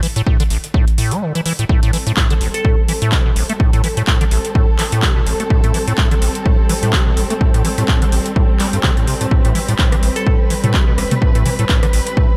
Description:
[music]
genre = acid house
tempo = 126 BPM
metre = 4/4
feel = swing 56% on 16ths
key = A minor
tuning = A4 = 441 Hz
[part]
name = acid bass, square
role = riff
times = 0.0-12.3 s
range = A1 to A3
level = -22 LUFS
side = equal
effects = tube saturation, analog chorus, sidechain pumping, tape echo
[part]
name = booming analog drum machine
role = drums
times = 0.0-12.2 s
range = handclaps, hi-hat, rim click, toms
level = -24 LUFS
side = equal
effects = overdrive
[part]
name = electronic kick drum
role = drums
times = 0.3-12.3 s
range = none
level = -17 LUFS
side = equal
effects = overdrive
[part]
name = warm symphonic string section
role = sustained chords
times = 1.7-12.4 s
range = G3 to B4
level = -25 LUFS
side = equal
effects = sidechain pumping
[part]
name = glassy wavetable pluck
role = melody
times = 2.5-3.0, 10.2-10.6 s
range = A4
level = -29 LUFS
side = equal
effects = chorus, analog delay
[sound]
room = little or no reverb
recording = none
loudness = -15 LUFS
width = mono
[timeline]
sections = 0.0-12.4 A section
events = filter sweep on acid bass 0.0-12.4; break 1.2-1.7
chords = 0.0 Am7

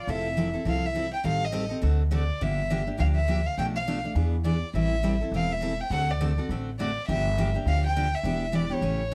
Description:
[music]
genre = acoustic string swing (jazz manouche)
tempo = 206 BPM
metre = 4/4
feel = swing 59% on 8ths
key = D minor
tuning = A4 = 440 Hz
[part]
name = rich violin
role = melody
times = 0.0-9.1 s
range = C#5 to G5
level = -33 LUFS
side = equal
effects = none
[part]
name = picked steel-string acoustic guitar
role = accompaniment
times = 0.1-9.1 s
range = B2 to A4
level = -32 LUFS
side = equal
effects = none
[part]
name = upright bass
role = bass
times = 0.1-9.1 s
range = E1 to E2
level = -30 LUFS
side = equal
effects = none
[sound]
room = light reverb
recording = dark, warm production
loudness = -27 LUFS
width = mono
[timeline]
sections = 0.1-9.1 A section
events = none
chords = 0.1 Fmaj7; 1.2 Am7b5; 1.8 D7; 2.4 Gm7; 3.6 Bm7b5; 4.2 E7; 4.7 Am7; 5.9 D7; 7.1 Gm7; 8.2 Em7

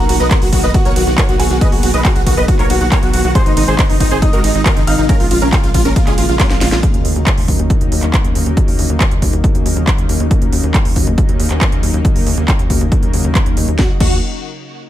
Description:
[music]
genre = uplifting trance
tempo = 138 BPM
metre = 4/4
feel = straight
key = Eb minor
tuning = A4 = 440 Hz
[part]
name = dense compressed supersaw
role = melody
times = 0.0-6.8, 13.8-14.2 s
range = Db4 to D#5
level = -19 LUFS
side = right 1 dB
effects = sidechain pumping, ping-pong delay
[part]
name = dark baby grand piano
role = second line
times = 0.0-6.7 s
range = F#4 to F6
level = -25 LUFS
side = equal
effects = ping-pong delay
[part]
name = supersaw stab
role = second line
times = 0.0-6.8 s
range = Eb4 to D#5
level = -26 LUFS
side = equal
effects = none
[part]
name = lush unison pad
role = sustained chords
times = 0.0-14.0 s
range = C3 to F#4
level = -21 LUFS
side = left 1 dB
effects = chorus, sidechain pumping
[part]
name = tight sequencer bass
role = bass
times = 0.0-14.2 s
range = Ab1 to Eb2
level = -17 LUFS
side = equal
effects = sidechain pumping
[part]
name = techno drum kit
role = drums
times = 0.1-14.1 s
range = crash cymbal, handclaps, hi-hat, ride cymbal, snare drum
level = -21 LUFS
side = right 1 dB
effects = none
[part]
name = electronic kick drum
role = drums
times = 0.3-14.1 s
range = none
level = -14 LUFS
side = equal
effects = none
[sound]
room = digital ambience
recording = none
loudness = -11 LUFS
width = side -12 dB against mid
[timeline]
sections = 0.0-6.8 A section; 6.8-13.8 B section; 13.8-14.9 C section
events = drop 0.0-6.8; drum fill 6.4-6.8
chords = 0.0 Bmaj7; 3.4 Ab; 5.1 Bbm7; 6.8 Ebm7

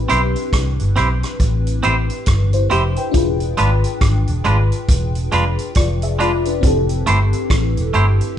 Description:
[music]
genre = lovers rock reggae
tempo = 69 BPM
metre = 4/4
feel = swing 60% on 16ths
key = A minor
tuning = A4 = 438 Hz
[part]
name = FM electric piano with soft pad layer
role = accompaniment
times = 0.0-8.4 s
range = C4 to G5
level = -22 LUFS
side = left 3 dB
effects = chorus, phaser
[part]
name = vintage muted fingered electric bass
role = bass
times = 0.0-8.2 s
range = E1 to C2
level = -18 LUFS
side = equal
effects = none
[part]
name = twangy electric guitar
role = stabs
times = 0.1-8.1 s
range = G#3 to C5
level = -19 LUFS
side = right 3 dB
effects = none
[part]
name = vintage drum kit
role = drums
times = 0.1-8.4 s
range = hi-hat, kick drum, rim click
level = -20 LUFS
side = equal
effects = none
[sound]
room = light reverb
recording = band playing live in one room, nothing above 10.5 kHz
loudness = -14 LUFS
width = side -10 dB against mid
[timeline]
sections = 0.0-8.4 A section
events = none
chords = 0.0 Am7; 3.1 E7b9; 6.6 Fmaj9

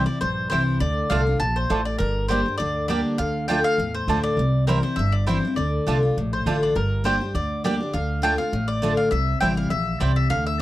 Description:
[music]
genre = bluegrass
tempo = 202 BPM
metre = 4/4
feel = swing 54% on 8ths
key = D minor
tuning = A4 = 442 Hz
[part]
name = mandolin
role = melody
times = 0.0-10.6 s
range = Bb4 to A5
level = -26 LUFS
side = left 1 dB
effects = none
[part]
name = picked steel-string acoustic guitar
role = accompaniment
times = 0.0-10.6 s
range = G2 to G4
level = -24 LUFS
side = left 1 dB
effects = none
[part]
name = upright bass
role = bass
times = 0.0-10.6 s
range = G1 to E2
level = -25 LUFS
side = right 1 dB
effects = none
[part]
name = mandolin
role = stabs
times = 0.5-10.1 s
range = A3 to A5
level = -27 LUFS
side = right 6 dB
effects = none
[sound]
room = little or no reverb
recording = dry, close 1970s-style studio recording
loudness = -20 LUFS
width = side -15 dB against mid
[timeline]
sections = 0.0-6.8 A section; 6.8-10.6 A section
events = none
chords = 0.0 C; 0.8 Dm; 2.0 Gm; 3.2 Dm; 4.4 C; 5.6 Dm; 6.8 Gm; 7.9 Dm; 9.1 C

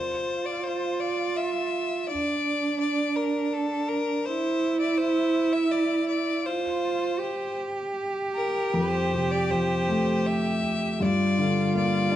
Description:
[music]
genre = celtic folk, Celtic slow air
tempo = 82 BPM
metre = 3/4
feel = rubato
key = unclear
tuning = A4 = 440 Hz
[part]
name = bright fiddle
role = melody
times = 0.0-12.2 s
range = A4 to E5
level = -29 LUFS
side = left 4 dB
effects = none
[part]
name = rich cello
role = second line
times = 0.0-12.2 s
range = D4 to G4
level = -26 LUFS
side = right 3 dB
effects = none
[part]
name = felt-muted upright piano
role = accompaniment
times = 8.7-12.2 s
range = F2 to D4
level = -25 LUFS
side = left 1 dB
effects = none
[sound]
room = moderate recital hall reverb, RT60 1.4 s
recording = dark, warm production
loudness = -24 LUFS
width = side -12 dB against mid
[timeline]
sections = 0.0-12.2 A section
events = none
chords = 0.0 N.C.; 6.4 F; 11.0 Gm7

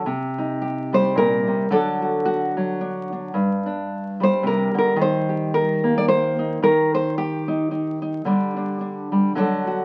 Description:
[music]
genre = folk, solo fingerstyle acoustic guitar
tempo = 110 BPM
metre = 3/4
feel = swing 58% on 8ths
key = unclear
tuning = A4 = 444 Hz
[part]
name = nylon-string guitar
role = solo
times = 0.0-9.8 s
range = G2 to D5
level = -22 LUFS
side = equal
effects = none
[sound]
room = moderate club reverb, RT60 0.5 s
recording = very old 78 rpm record, vinyl crackle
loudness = -22 LUFS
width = mono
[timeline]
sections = 0.0-9.8 A section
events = none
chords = 0.1 Cm; 1.7 D; 3.3 G5; 5.0 Eb; 6.6 N.C.; 8.3 Dsus4; 9.3 D

